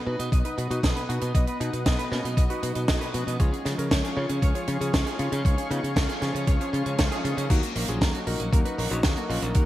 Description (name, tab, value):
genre	italo disco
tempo	117 BPM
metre	4/4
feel	straight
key	Eb minor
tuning	A4 = 440 Hz
part	warm electric grand piano	melody	0.0-9.7 s	F3 to Db5	-33 LUFS	left 1 dB	vintage 12-bit sampler grit, low-pass filter, digital delay
part	lush unison pad	sustained chords	0.0-9.7 s	Ab4 to D#6	-36 LUFS	equal	chorus
part	mellow synth brass	stabs	0.0-9.7 s	B2 to F#4	-36 LUFS	left 2 dB	chorus, phaser
part	clean electric guitar	arpeggios	0.1-9.6 s	Db4 to D#5	-35 LUFS	right 2 dB	lush chorus, digital delay
part	modern bright fingered electric bass	bass	0.1-9.6 s	Bb1 to Db3	-29 LUFS	equal	tube saturation
part	tight funk drum kit	drums	0.2-9.7 s	crash cymbal, hi-hat, snare drum	-30 LUFS	right 1 dB	gated reverb
part	electronic kick drum	drums	0.3-9.7 s	none	-23 LUFS	equal	none
room	moderate lush hall reverb, RT60 2.6 s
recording	bright 1980s-style digital production, vinyl crackle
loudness	-23 LUFS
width	side -14 dB against mid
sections	0.0-7.5 A section; 7.5-9.7 B section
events	filter sweep on analog polysynth 0.0-7.5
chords	0.0 B; 3.4 Db; 7.5 Ebm7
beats	0.32 0.83 | 1.35 1.86 2.37 2.88 | 3.40 3.91 4.42 4.94 | 5.45 5.96 6.47 6.99 | 7.50 8.01 8.53 9.04 | 9.55